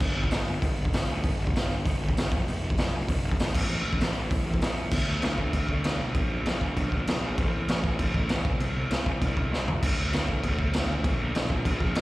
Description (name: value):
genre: punk rock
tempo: 196 BPM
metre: 4/4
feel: straight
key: unclear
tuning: A4 = 442 Hz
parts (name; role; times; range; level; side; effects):
- fuzz picked electric bass; bass; 0.0-12.0 s; F1 to E2; -29 LUFS; equal; overdrive
- raw garage drum kit; drums; 0.0-12.0 s; crash cymbal, hi-hat, kick drum, snare drum, toms; -26 LUFS; equal; none
room: little or no reverb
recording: live gig heard through the venue's PA, recital hall reverb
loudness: -24 LUFS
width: side -18 dB against mid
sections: 0.0-4.9 A section; 4.9-12.0 B section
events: drum fill 9.5-9.8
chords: none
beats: | 0.02 0.33 0.63 0.94 | 1.25 1.55 1.86 2.17 | 2.47 2.78 3.09 3.39 | 3.70 4.01 4.31 4.62 | 4.93 5.23 5.54 5.85 | 6.15 6.46 6.77 7.07 | 7.38 7.68 7.99 8.30 | 8.60 8.91 9.22 9.52 | 9.83 10.13 10.44 10.74 | 11.05 11.36 11.66 11.97